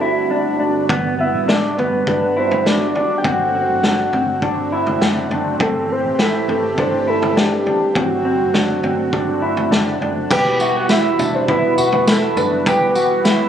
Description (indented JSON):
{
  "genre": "dream pop",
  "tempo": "102 BPM",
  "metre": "4/4",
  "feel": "straight",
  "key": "unclear",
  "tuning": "A4 = 443 Hz",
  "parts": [
    { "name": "phased analog pad", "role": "sustained chords", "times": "0.0-13.5 s", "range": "G2 to G4", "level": "-23 LUFS", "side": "right 3 dB", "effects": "phaser, chorus" },
    { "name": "mellow electric guitar", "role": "arpeggios", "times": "0.0-13.5 s", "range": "B3 to G4", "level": "-20 LUFS", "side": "equal", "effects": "wide subtle chorus, tape echo" },
    { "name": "vintage muted fingered electric bass", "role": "bass", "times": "0.9-13.5 s", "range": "E1 to A1", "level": "-30 LUFS", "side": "left 1 dB", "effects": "none" },
    { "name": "vintage drum kit", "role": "drums", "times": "0.9-13.4 s", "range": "crash cymbal, kick drum, snare drum, tambourine, toms", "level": "-20 LUFS", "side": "left 1 dB", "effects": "none" },
    { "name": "soft octave-layered synth lead", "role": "melody", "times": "1.2-13.5 s", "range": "F#4 to G5", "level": "-19 LUFS", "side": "equal", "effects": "chorus, tape echo" },
    { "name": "small celesta", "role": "texture", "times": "10.6-12.2 s", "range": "E5", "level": "-32 LUFS", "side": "right 2 dB", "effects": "none" }
  ],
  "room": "moderate concert hall reverb, RT60 2.1 s",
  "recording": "recorded on a phone in the room, club reverb",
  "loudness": "-15 LUFS",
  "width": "side -9 dB against mid",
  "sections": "0.0-10.3 A section; 10.3-13.5 B section",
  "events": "none",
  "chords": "0.0 D7/G; 0.9 Gmaj7; 3.2 D7; 5.6 Am7/G; 8.0 D7; 10.3 Emadd9"
}